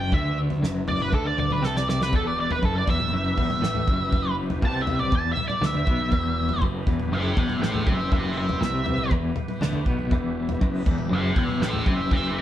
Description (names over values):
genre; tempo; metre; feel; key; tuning
psychedelic rock; 120 BPM; 4/4; straight; E minor; A4 = 439 Hz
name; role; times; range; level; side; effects
octave-fuzz lead guitar; melody; 0.0-12.4 s; G4 to A5; -27 LUFS; right 1 dB; wah, distortion
twelve-string electric guitar; riff; 0.0-12.4 s; E2 to D3; -26 LUFS; left 1 dB; tremolo
fuzz picked electric bass; bass; 0.0-12.4 s; E1 to D2; -31 LUFS; right 1 dB; overdrive
tanpura; drone; 0.0-12.4 s; E2 to B3; -40 LUFS; right 3 dB; none
damped 70s drum kit; drums; 0.1-12.2 s; kick drum, snare drum, toms; -25 LUFS; equal; none
congas; percussion; 0.5-12.1 s; none; barely audible; none; none
overdriven tonewheel organ; sustained chords; 2.1-12.4 s; E3 to B4; -39 LUFS; right 3 dB; chorus vibrato, slow rotary speaker
room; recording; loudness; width
moderate stone room reverb, RT60 1.0 s; band playing live in one room; -21 LUFS; side -12 dB against mid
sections
0.0-12.4 A section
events
lead electric guitar solo 0.0-12.4; drum fill 1.6-2.1, 9.7-10.1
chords
0.0 Em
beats
| 0.12 0.62 1.12 1.62 | 2.13 2.63 3.13 3.63 | 4.13 4.62 5.12 5.62 | 6.12 6.62 7.12 7.62 | 8.12 8.62 9.12 9.62 | 10.12 10.61 11.11 11.61 | 12.11